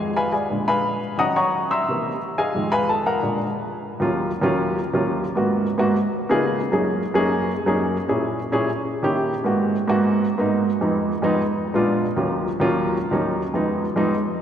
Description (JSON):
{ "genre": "jazz", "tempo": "176 BPM", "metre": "4/4", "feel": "straight", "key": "Eb minor", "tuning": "A4 = 440 Hz", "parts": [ { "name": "dark upright piano", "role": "solo", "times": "0.0-14.1 s", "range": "Eb2 to Fb6", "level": "-19 LUFS", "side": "equal", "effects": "none" } ], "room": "wet cathedral reverb, RT60 4.5 s", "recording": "recorded in a church or concert hall", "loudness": "-19 LUFS", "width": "side -9 dB against mid", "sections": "0.0-3.9 A section; 3.9-14.4 B section", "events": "upright piano solo 0.0-3.9", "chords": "0.0 Fm7b5; 0.5 Bb7b9; 1.2 Ebm7; 1.9 C7b13; 2.5 Fm7b5; 3.2 Bb7b13; 3.9 Ebm9; 5.3 Abm7; 6.0 Db13; 6.6 Gb69; 8.0 Bbm7b5; 8.7 Eb7b9; 9.4 Abm7; 10.7 Fm7b5; 11.4 Bb7b9; 12.1 Ebm9; 13.5 Fm7b5" }